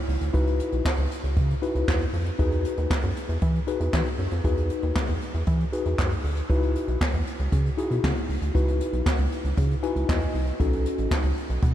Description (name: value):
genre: early-eighties boogie funk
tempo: 117 BPM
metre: 4/4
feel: straight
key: C# minor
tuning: A4 = 441 Hz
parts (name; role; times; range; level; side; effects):
- rubbery square bass; bass; 0.1-11.7 s; A1 to E3; -26 LUFS; equal; none
- jazz brush drum kit; drums; 0.1-11.7 s; handclaps, hi-hat, kick drum, snare drum; -26 LUFS; equal; none
- mellow tine electric piano; accompaniment; 0.3-11.1 s; C#4 to G#5; -29 LUFS; left 3 dB; medium stereo tremolo
room: moderate huge ambient reverb, RT60 5.1 s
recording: dreamy mix soaked in reverb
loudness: -22 LUFS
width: side -12 dB against mid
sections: 0.0-11.7 A section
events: tine electric piano fill 9.6-10.6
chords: 0.0 C#m11; 2.4 Emaj7; 6.5 C#m11; 10.6 B7